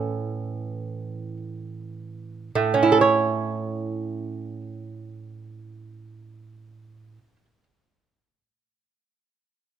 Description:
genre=classical, baroque-style dance for lute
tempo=free time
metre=none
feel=none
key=A major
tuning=A4 = 440 Hz
part: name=lute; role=solo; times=0.0-7.6 s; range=A2 to C#5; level=-24 LUFS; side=right 4 dB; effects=none
room=light reverb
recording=close, detailed microphones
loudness=-22 LUFS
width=side -9 dB against mid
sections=0.0-2.6 A section; 2.6-6.0 B section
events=slowing down 0.0-2.6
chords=0.0 A

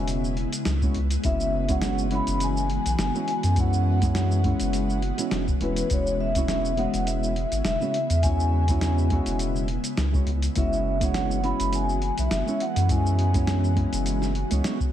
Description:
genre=sunset chillout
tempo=103 BPM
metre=4/4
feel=swing 55% on 16ths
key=E major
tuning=A4 = 440 Hz
part: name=vibraphone with soft mallets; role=melody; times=0.0-14.6 s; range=B4 to B5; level=-30 LUFS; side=equal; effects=digital delay
part: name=flamenco guitar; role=accompaniment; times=0.0-14.8 s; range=G#3 to F#4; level=-30 LUFS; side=moving between left 3 dB and right 4 dB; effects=auto-pan, tape echo
part: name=ethereal airy pad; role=sustained chords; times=0.0-14.9 s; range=C#3 to F#4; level=-31 LUFS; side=equal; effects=ensemble chorus, built-in reverb
part: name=round analog bass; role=bass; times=0.0-14.6 s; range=E1 to F#2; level=-25 LUFS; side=equal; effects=none
part: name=dusty soul sampler-style drum kit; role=drums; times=0.1-14.9 s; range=hi-hat, shaker, snare drum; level=-32 LUFS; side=equal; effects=none
part: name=electronic kick drum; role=drums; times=0.8-14.9 s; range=none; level=-27 LUFS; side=equal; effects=none
room=light reverb, digital ambience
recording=none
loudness=-22 LUFS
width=side -11 dB against mid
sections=0.0-14.9 A section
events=none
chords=0.0 E6; 10.6 F#9sus4

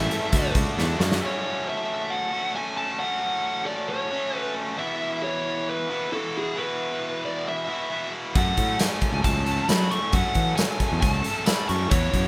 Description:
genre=indie rock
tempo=135 BPM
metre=4/4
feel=straight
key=unclear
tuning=A4 = 438 Hz
part: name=fuzz lead guitar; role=melody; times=0.0-12.3 s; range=G#4 to C#6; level=-30 LUFS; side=equal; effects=distortion, slapback echo
part: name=distorted electric guitar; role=riff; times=0.0-12.3 s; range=E3 to A4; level=-31 LUFS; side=equal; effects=overdrive
part: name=fuzz fingered electric bass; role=bass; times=0.0-1.2, 8.4-12.3 s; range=C#2 to F#3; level=-29 LUFS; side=equal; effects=overdrive
part: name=big rock drum kit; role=drums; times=0.1-1.2, 8.4-12.2 s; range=hi-hat, kick drum, snare drum, tambourine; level=-27 LUFS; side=equal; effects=none
room=light reverb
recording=rough home demo mix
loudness=-25 LUFS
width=mono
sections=0.0-1.2 A section; 1.2-12.3 B section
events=drum fill 0.8-1.2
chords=0.3 D; 1.2 F#m; 4.8 Esus2; 8.4 F#m

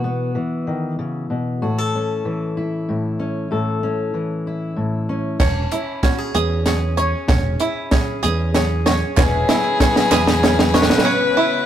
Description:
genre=indie folk with a building arrangement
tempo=64 BPM (dotted quarters)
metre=6/8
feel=straight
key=E major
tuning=A4 = 439 Hz
part: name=fingerpicked steel-string acoustic guitar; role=accompaniment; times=0.0-11.1 s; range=A2 to A4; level=-23 LUFS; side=left 2 dB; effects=none
part: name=bluegrass banjo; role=arpeggios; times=5.4-11.7 s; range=C#4 to C#5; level=-22 LUFS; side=right 4 dB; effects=none
part: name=fingered electric bass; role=bass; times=5.4-10.9 s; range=E1 to E2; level=-22 LUFS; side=right 1 dB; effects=none
part: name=compact cocktail drum kit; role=drums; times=5.4-11.1 s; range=crash cymbal, hi-hat, kick drum, snare drum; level=-18 LUFS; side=equal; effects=none
part: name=dark fiddle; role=second line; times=9.2-11.7 s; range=G#4 to B4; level=-20 LUFS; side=left 3 dB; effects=none
part: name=picked plugged-in twelve-string acoustic guitar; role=accompaniment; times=9.2-11.7 s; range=E3 to B4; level=-25 LUFS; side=left 8 dB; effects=none
part: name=muted chamber string section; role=sustained chords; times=9.2-11.7 s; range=C#3 to F#4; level=-28 LUFS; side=right 2 dB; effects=none
part: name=group handclap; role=percussion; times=9.2-11.0 s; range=none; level=-28 LUFS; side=right 4 dB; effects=none
room=moderate stone room reverb, RT60 1.2 s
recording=rough rehearsal-room recording, tube saturation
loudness=-17 LUFS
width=side -10 dB against mid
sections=0.0-5.4 A section; 5.4-11.7 B section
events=build-up 5.4-11.7; drum fill 5.4-11.1; break 11.1-11.7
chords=0.0 Bsus4; 1.6 A; 5.4 E6

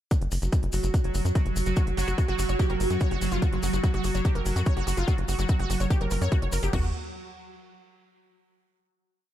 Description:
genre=psychedelic trance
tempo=145 BPM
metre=4/4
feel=straight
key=unclear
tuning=A4 = 440 Hz
part: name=pulsing gated texture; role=sustained chords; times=0.4-6.7 s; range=F#3 to F#4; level=-32 LUFS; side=right 2 dB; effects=chorus, built-in reverb, sidechain pumping
part: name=electronic hi-hat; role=drums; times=0.1-6.7 s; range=none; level=-43 LUFS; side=right 4 dB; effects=none
part: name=garage drum kit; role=drums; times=0.1-6.8 s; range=crash cymbal, kick drum, toms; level=-26 LUFS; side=equal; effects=none
part: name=maracas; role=percussion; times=0.1-6.7 s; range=none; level=-39 LUFS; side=left 4 dB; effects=none
part: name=tight sequencer bass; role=bass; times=0.2-6.9 s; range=F#1 to F#2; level=-27 LUFS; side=equal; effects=none
part: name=wide unison pluck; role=riff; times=1.8-6.9 s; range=E#4 to C#5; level=-33 LUFS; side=equal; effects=auto-pan, cassette tape, sidechain pumping, dub echo
room=little or no reverb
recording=none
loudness=-23 LUFS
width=side -12 dB against mid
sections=0.1-6.7 groove; 6.7-8.4 final chord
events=none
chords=0.1 F#5; 6.7 N.C.

